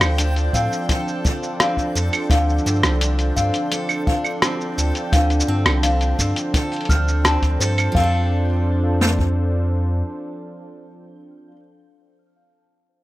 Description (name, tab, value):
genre	folktronica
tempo	85 BPM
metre	4/4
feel	straight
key	F major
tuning	A4 = 440 Hz
part	small celesta	second line	0.0-13.0 s	C5 to F6	-27 LUFS	left 2 dB	digital delay
part	warm analog pad	sustained chords	0.0-11.5 s	F3 to C5	-28 LUFS	right 1 dB	chorus
part	picked steel-string acoustic guitar	arpeggios	0.0-11.6 s	D3 to A4	-27 LUFS	equal	tape echo
part	warm sub bass	bass	0.0-10.0 s	C2 to A2	-19 LUFS	equal	none
part	lo-fi sampler-style drum kit	drums	0.0-7.9 s	claves, hi-hat, rim click, shaker	-22 LUFS	equal	small room ambience
part	backwards swelling texture	texture	0.0-8.0 s	G5 to G6	-35 LUFS	equal	built-in reverb
part	jazz brush drum kit	drums	0.5-9.4 s	kick drum, snare drum	-20 LUFS	equal	small room ambience
room	light reverb, studio reverb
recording	rough home demo mix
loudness	-17 LUFS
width	side -16 dB against mid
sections	0.0-8.0 A section; 8.0-10.8 B section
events	none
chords	0.0 F6; 2.3 Dm7; 8.0 F6